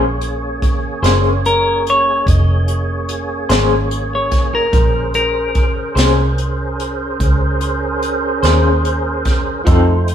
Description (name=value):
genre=slow blues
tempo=49 BPM (dotted quarters)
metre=12/8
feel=straight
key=Bb minor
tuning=A4 = 440 Hz
part: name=electric guitar through a small old amp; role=accompaniment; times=0.0-9.9 s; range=F3 to C5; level=-17 LUFS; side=left 2 dB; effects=tremolo
part: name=tonewheel organ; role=sustained chords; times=0.0-10.1 s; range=A3 to Db5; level=-21 LUFS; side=right 2 dB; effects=overdrive, chorus vibrato, slow rotary speaker
part: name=vintage muted fingered electric bass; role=bass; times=0.0-10.1 s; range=F1 to F2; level=-18 LUFS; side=equal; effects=none
part: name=vintage brush drum kit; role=drums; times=0.2-10.1 s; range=hi-hat, kick drum, snare drum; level=-18 LUFS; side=equal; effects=none
part: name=clean electric guitar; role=melody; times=1.5-5.9 s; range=Bb4 to Eb5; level=-16 LUFS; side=left 1 dB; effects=none
room=moderate stone room reverb, RT60 1.3 s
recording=band playing live in one room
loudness=-13 LUFS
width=side -9 dB against mid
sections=0.0-10.1 A section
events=none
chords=0.0 Bbm9